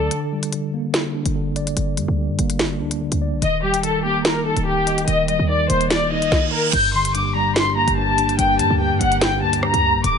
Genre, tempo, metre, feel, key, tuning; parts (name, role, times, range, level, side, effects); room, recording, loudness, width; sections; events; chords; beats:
hip hop, drill; 145 BPM; 4/4; half-time; G minor; A4 = 440 Hz
warm studio violin section; melody; 0.0-0.1, 3.4-10.2 s; G4 to G6; -19 LUFS; left 2 dB; low-pass filter
mellow tine electric piano; accompaniment; 0.0-10.2 s; G2 to Eb5; -23 LUFS; equal; fast stereo tremolo, low-pass filter
short 808-style bass; bass; 0.0-10.2 s; D1 to G2; -24 LUFS; equal
drill drum kit; drums; 0.1-10.1 s; crash cymbal, hi-hat, kick drum, rim click, snare drum; -23 LUFS; equal
reverse cymbal; sound effects; 6.1-6.7 s; -24 LUFS; right 8 dB
airy breathy pad; sustained chords; 6.7-10.2 s; D3 to G4; -28 LUFS; right 1 dB; chorus
light reverb; nothing above 11.0 kHz; -17 LUFS; side -6 dB against mid
0.0-6.7 A section; 6.7-10.2 B section
break 0.1-3.4; reverse cymbal 6.1-6.7
0.1 Gm; 3.4 Eb; 6.7 Gm
| 0.11 0.53 0.94 1.35 | 1.77 2.18 2.59 3.01 | 3.42 3.83 4.25 4.66 | 5.08 5.49 5.90 6.32 | 6.73 7.15 7.56 7.97 | 8.39 8.80 9.21 9.63 | 10.04